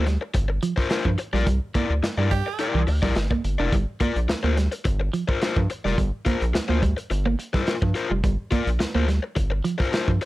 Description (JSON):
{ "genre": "funk", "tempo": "106 BPM", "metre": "4/4", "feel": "straight", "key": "G dorian", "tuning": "A4 = 441 Hz", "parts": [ { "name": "overdriven electric guitar", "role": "accompaniment", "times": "0.0-10.3 s", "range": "E4 to D5", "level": "-27 LUFS", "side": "left 4 dB", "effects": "none" }, { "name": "clean electric guitar", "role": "riff", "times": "0.0-10.2 s", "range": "E3 to D4", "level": "-27 LUFS", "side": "right 5 dB", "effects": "none" }, { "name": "round analog bass", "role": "bass", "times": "0.0-10.2 s", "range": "F1 to G2", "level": "-23 LUFS", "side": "equal", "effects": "none" }, { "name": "crunchy breakbeat drum kit", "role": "drums", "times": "0.1-10.3 s", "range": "hi-hat, kick drum, snare drum", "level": "-26 LUFS", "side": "equal", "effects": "none" }, { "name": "raspy tenor saxophone", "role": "second line", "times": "2.3-2.7 s", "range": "G4", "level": "-31 LUFS", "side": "right 8 dB", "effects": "analog delay" } ], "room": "light reverb", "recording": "none", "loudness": "-21 LUFS", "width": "side -17 dB against mid", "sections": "0.0-10.3 A section", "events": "band accent 1.5-3.7", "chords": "0.0 Gm7; 1.5 C9; 3.7 Gm7" }